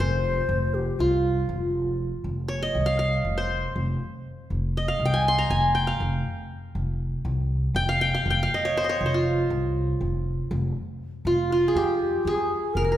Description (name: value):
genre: Turkish makam ensemble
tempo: 240 BPM (eighths)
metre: 9/8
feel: straight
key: F makam nihavent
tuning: A4 = 440 Hz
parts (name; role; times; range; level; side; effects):
- qanun; melody; 0.0-13.0 s; F4 to C6; -25 LUFS; right 1 dB; none
- breathy mellow ney; second line; 0.0-2.0, 11.3-13.0 s; F4 to C5; -29 LUFS; left 4 dB; none
- upright bass; bass; 0.0-13.0 s; F1 to F2; -26 LUFS; equal; none
room: wet recital hall reverb, RT60 1.8 s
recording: recorded in a church or concert hall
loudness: -22 LUFS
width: side -12 dB against mid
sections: 0.0-2.2 A section; 2.2-11.3 B section; 11.3-13.0 C section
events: none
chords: none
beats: 0.24 0.49 0.74 0.99 1.24 1.50 1.75 2.00 | 2.25 2.50 2.75 3.00 3.25 3.50 3.75 4.00 4.25 | 4.50 4.75 5.00 5.25 5.50 5.75 6.00 6.25 6.50 | 6.75 7.00 7.25 7.50 7.75 8.00 8.25 8.50 8.75 | 9.00 9.25 9.50 9.75 10.00 10.25 10.51 10.76 11.01 | 11.26 11.51 11.76 12.01 12.26 12.51 12.76